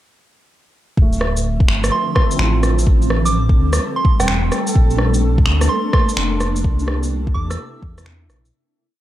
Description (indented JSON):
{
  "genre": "future garage",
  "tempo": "127 BPM",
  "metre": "4/4",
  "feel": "swing 65% on 16ths",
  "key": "D minor",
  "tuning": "A4 = 444 Hz",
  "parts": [
    { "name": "felt-muted upright piano", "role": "accompaniment", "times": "1.0-8.6 s", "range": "A3 to G4", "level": "-28 LUFS", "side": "right 3 dB", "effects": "sidechain pumping, tape echo" },
    { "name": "granular cloud pad", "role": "sustained chords", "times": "1.7-8.5 s", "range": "C3 to E5", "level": "-24 LUFS", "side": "equal", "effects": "built-in reverb, sidechain pumping" },
    { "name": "dark detuned saw bass", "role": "bass", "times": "1.0-8.5 s", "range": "D1 to E2", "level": "-18 LUFS", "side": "equal", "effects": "sidechain pumping" },
    { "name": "electronic kick drum", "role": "drums", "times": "1.0-7.9 s", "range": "none", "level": "-15 LUFS", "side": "equal", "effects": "none" },
    { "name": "backwards swelling texture", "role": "texture", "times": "2.1-8.5 s", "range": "A4", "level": "-32 LUFS", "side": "right 5 dB", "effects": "built-in reverb" },
    { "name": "electronic shaker, rim click and finger snaps", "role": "drums", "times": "1.1-8.5 s", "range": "none", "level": "-22 LUFS", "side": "equal", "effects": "none" },
    { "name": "soft synth bell", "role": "melody", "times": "1.9-7.8 s", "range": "G5 to E6", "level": "-24 LUFS", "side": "right 3 dB", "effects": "chorus, analog delay" }
  ],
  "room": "light reverb",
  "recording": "dark, warm production",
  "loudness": "-14 LUFS",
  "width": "side -14 dB against mid",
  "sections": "1.0-8.5 groove",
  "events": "fade-out 6.0-8.5",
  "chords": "1.0 Dm9; 2.9 Am7; 4.8 Bbmaj7; 6.6 C9",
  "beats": "| 0.97 1.45 1.92 2.39 | 2.86 3.33 3.81 4.28 | 4.75 5.22 5.70 6.17 | 6.64 7.11 7.59 8.06"
}